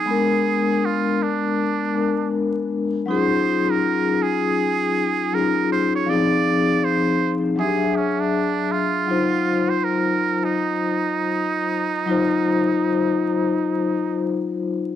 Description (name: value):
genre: hip hop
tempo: 80 BPM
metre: 4/4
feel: swing 61% on 16ths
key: Eb dorian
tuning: A4 = 440 Hz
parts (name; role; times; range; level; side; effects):
- trumpet with straight mute; melody; 0.0-14.3 s; Db4 to D5; -23 LUFS; right 7 dB; cassette tape
- vibraphone with soft mallets; accompaniment; 0.0-15.0 s; F3 to E5; -20 LUFS; left 4 dB; cassette tape
room: light reverb, studio ambience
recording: home recording on cassette, vinyl crackle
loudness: -18 LUFS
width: side -10 dB against mid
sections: 0.0-15.0 A section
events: none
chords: 0.1 Bb7b9; 3.1 Ebm11; 6.1 Fm7; 7.6 E9; 9.1 Ebm69